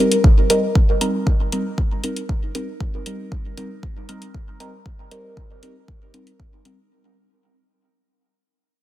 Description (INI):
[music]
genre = dub techno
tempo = 117 BPM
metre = 4/4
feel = straight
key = unclear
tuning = A4 = 440 Hz
[part]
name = deep mellow chord stab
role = stabs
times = 0.0-6.8 s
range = G3 to Bb4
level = -22 LUFS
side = equal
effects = chorus, phaser, sidechain pumping, dub echo
[part]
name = electronic hi-hat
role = drums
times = 0.1-6.8 s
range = none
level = -22 LUFS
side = left 2 dB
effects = none
[part]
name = electronic kick drum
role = drums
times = 0.2-6.5 s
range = none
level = -18 LUFS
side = equal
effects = none
[sound]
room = light reverb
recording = dense, heavily limited modern master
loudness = -18 LUFS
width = side -14 dB against mid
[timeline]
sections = 0.0-6.9 A section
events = fade-out 0.0-6.9; filter sweep on synth stab 0.0-6.9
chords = 0.0 Cm7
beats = 0.24 | 0.75 1.27 1.78 2.29 | 2.81 3.32 3.83 4.34 | 4.86 5.37 5.88 6.39